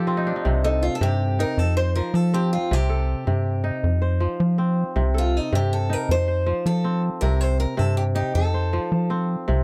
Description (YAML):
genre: west african traditional, West African string and xylophone music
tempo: 106 BPM (dotted quarters)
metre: 12/8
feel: straight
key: unclear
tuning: A4 = 441 Hz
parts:
  - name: kora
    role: arpeggios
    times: 0.0-9.6 s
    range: C3 to D5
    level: -29 LUFS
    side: equal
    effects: none
  - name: tight sequencer bass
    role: bass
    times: 0.0-9.6 s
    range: C2 to F3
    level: -24 LUFS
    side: equal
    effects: none
  - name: picked acoustic archtop guitar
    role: melody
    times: 0.6-9.3 s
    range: Eb4 to C5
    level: -30 LUFS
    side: equal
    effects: none
room: little or no reverb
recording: dry, close 1970s-style studio recording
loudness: -22 LUFS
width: mono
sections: 0.0-9.6 A section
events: kora fill 0.0-0.5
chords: 0.5 Cm; 1.6 F5; 2.7 Cm; 3.8 F5; 5.0 Cm; 6.1 F; 7.2 Cm; 8.4 F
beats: | 0.46 1.02 1.58 2.15 | 2.71 3.27 3.84 4.40 | 4.96 5.53 6.09 6.66 | 7.22 7.79 8.36 8.92 | 9.49